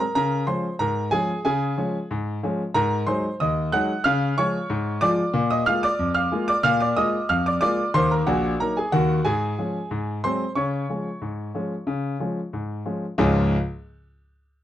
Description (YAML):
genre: ragtime piano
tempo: 92 BPM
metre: 2/4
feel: straight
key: Db major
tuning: A4 = 443 Hz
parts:
  - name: clear grand piano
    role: solo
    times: 0.0-13.6 s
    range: Bb1 to Gb6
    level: -21 LUFS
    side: equal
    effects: none
room: light reverb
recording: dry, close 1970s-style studio recording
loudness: -21 LUFS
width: side -12 dB against mid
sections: 0.0-13.2 A section; 13.2-14.5 B section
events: none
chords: 0.2 Db; 2.7 Ab7; 4.0 Db; 5.3 Bb7; 7.9 Ebm; 9.2 Db/Ab; 9.9 Ab7; 10.6 Db